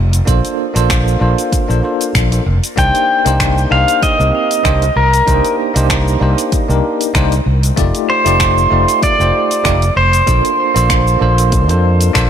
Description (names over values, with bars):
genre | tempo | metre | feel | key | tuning
sunset chillout | 96 BPM | 4/4 | swing 55% on 16ths | C dorian | A4 = 444 Hz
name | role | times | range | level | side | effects
fretless electric bass | bass | 0.0-12.3 s | F1 to F2 | -14 LUFS | equal | tube saturation
smooth R&B drum kit | drums | 0.1-12.3 s | cabasa, finger snaps, hi-hat | -21 LUFS | left 1 dB | overdrive, soft clipping on snare
bell-like tine electric piano | accompaniment | 0.3-12.3 s | A3 to D5 | -18 LUFS | moving between left 8 dB and right 8 dB | medium stereo tremolo, auto-pan, tape echo, shimmer reverb
electronic kick drum | drums | 0.3-12.3 s | none | -18 LUFS | equal | overdrive
pedal steel guitar | melody | 2.8-12.1 s | Bb4 to G5 | -14 LUFS | right 1 dB | vintage 12-bit sampler grit, ping-pong delay, shimmer reverb
room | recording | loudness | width
light reverb | blown-out, overdriven recording, overdrive | -11 LUFS | side -8 dB against mid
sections
0.0-12.3 A section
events
none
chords
0.3 Bbmaj9; 2.8 Cm9; 7.8 F13; 10.3 Bbmaj9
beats
| 0.28 0.90 1.52 2.15 | 2.77 3.40 4.03 4.65 | 5.28 5.90 6.53 7.15 | 7.78 8.40 9.03 9.65 | 10.28 10.90 11.53 12.15